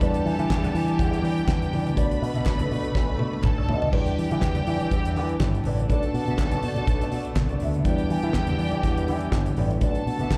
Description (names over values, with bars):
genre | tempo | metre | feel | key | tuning
disco | 122 BPM | 4/4 | swing 56% on 16ths | E minor | A4 = 439 Hz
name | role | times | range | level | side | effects
clear studio violin section | second line | 0.0-10.4 s | G4 to B5 | -36 LUFS | equal | slapback echo
mellow electric guitar | accompaniment | 0.0-10.3 s | E4 to E5 | -37 LUFS | equal | wah, slapback echo
mellow tine electric piano | accompaniment | 0.0-10.4 s | G3 to B4 | -34 LUFS | equal | slapback echo
warm studio string section | sustained chords | 0.0-10.4 s | E3 to G4 | -36 LUFS | equal | none
fingered electric bass with an envelope filter | bass | 0.0-10.4 s | G1 to E3 | -28 LUFS | equal | none
damped 70s drum kit | drums | 0.0-10.4 s | crash cymbal, hi-hat, kick drum, snare drum, toms | -28 LUFS | equal | none
congas | percussion | 0.0-10.4 s | none | -37 LUFS | equal | none
group handclap | percussion | 0.5-10.4 s | none | -46 LUFS | equal | none
room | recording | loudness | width
little or no reverb | live gig heard through the venue's PA, club reverb | -24 LUFS | mono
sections
0.0-3.9 A section; 3.9-10.4 B section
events
drum fill 2.9-3.9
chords
0.0 Em7; 2.0 Bm7; 3.9 Em7; 5.9 Bm7; 7.9 Em7; 9.8 Bm7